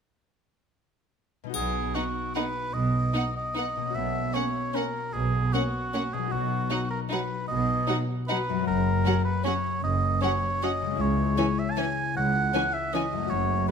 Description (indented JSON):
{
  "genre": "classical, orchestral ballroom waltz",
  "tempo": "153 BPM",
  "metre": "3/4",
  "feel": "uneven beats, rubato",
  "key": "B major",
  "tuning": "A4 = 440 Hz",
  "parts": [
    { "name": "concert harp", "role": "arpeggios", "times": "1.4-13.7 s", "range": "F#2 to F#4", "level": "-32 LUFS", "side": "left 11 dB", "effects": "none" },
    { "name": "warm oboe", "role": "second line", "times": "1.5-13.7 s", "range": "F#4 to A5", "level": "-29 LUFS", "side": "right 2 dB", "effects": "none" },
    { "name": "clear chamber double bass section", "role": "bass", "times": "1.5-13.6 s", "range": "F#1 to C#2", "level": "-32 LUFS", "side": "right 3 dB", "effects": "none" },
    { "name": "rich studio cello section", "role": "bass", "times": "1.5-13.6 s", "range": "C#2 to B2", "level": "-32 LUFS", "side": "right 2 dB", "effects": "none" },
    { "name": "triangle", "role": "percussion", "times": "1.5-2.3 s", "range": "none", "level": "-40 LUFS", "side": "left 9 dB", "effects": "none" },
    { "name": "warm chamber violin section", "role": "melody", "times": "1.9-13.0 s", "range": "F#5 to G#5", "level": "-36 LUFS", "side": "equal", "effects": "none" },
    { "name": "warm chamber violin section", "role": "second line", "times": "1.9-13.0 s", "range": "C#4 to D#4", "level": "-34 LUFS", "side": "left 2 dB", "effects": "none" },
    { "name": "warm chamber viola section", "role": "accompaniment", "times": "2.0-13.7 s", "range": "E3 to B3", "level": "-34 LUFS", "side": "right 1 dB", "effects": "none" }
  ],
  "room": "moderate recital hall reverb, RT60 1.5 s",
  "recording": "none",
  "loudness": "-24 LUFS",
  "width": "side -6 dB against mid",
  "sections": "1.5-13.7 A section",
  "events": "none",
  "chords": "1.5 B; 8.7 F#; 11.0 C#m",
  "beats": "| 1.54 1.95 2.36 | 2.75 3.15 3.56 | 3.95 4.34 4.75 | 5.14 5.54 5.94 | 6.33 6.71 7.12 | 7.50 7.89 8.29 | 8.68 9.06 9.46 | 9.84 10.23 10.62 | 11.00 11.38 11.78 | 12.16 12.54 12.93 | 13.30 13.69"
}